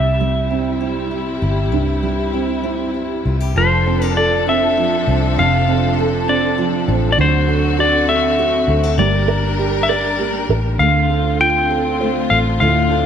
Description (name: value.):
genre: six-eight pop ballad.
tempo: 66 BPM (dotted quarters).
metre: 6/8.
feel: straight.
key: F major.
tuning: A4 = 440 Hz.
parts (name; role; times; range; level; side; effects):
clean lap steel guitar; melody; 0.0-13.1 s; C5 to G5; -18 LUFS; left 2 dB; slapback echo.
felt-muted upright piano; accompaniment; 0.0-13.1 s; G2 to C5; -21 LUFS; right 10 dB; none.
warm studio string section; sustained chords; 0.0-13.1 s; C3 to Bb4; -23 LUFS; left 3 dB; none.
fingerpicked steel-string acoustic guitar; arpeggios; 0.0-13.1 s; F3 to A4; -26 LUFS; left 5 dB; slapback echo.
vintage muted fingered electric bass; bass; 0.0-13.1 s; F1 to D2; -20 LUFS; equal; none.
room: moderate concert hall reverb, RT60 1.8 s, small room ambience.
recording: none.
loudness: -14 LUFS.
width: side -8 dB against mid.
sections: 0.0-3.6 A section; 3.6-13.1 B section.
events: none.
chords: 0.0 C; 3.6 F6; 7.2 D7; 9.0 Gm; 10.8 Dm7.